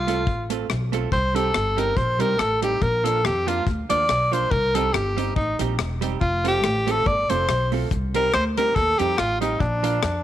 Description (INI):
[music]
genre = ska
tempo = 141 BPM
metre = 4/4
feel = swing 55% on 8ths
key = unclear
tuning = A4 = 440 Hz
[part]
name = breathy tenor saxophone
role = melody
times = 0.0-10.2 s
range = D4 to D5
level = -22 LUFS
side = left 1 dB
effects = none
[part]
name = upright bass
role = bass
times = 0.0-10.2 s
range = E1 to F2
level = -26 LUFS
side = equal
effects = none
[part]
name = hollow-body jazz guitar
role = accompaniment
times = 0.1-10.0 s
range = F3 to A4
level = -29 LUFS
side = right 11 dB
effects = none
[part]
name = deep reggae drum kit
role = drums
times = 0.1-10.1 s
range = hi-hat, kick drum, rim click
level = -27 LUFS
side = left 3 dB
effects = none
[sound]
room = light reverb, small room ambience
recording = 1960s-style stereo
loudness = -20 LUFS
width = side -12 dB against mid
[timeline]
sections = 0.0-10.2 A section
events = tenor saxophone solo 0.0-10.2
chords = 0.0 F; 1.1 Cm; 2.8 Bb; 4.5 Cm; 6.2 F; 7.9 Cm; 9.6 Bb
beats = 0.27 0.70 | 1.12 1.54 1.97 2.39 | 2.82 3.24 3.67 4.09 | 4.51 4.94 5.36 5.79 | 6.21 6.64 7.06 7.48 | 7.91 8.33 8.76 9.18 | 9.60 10.03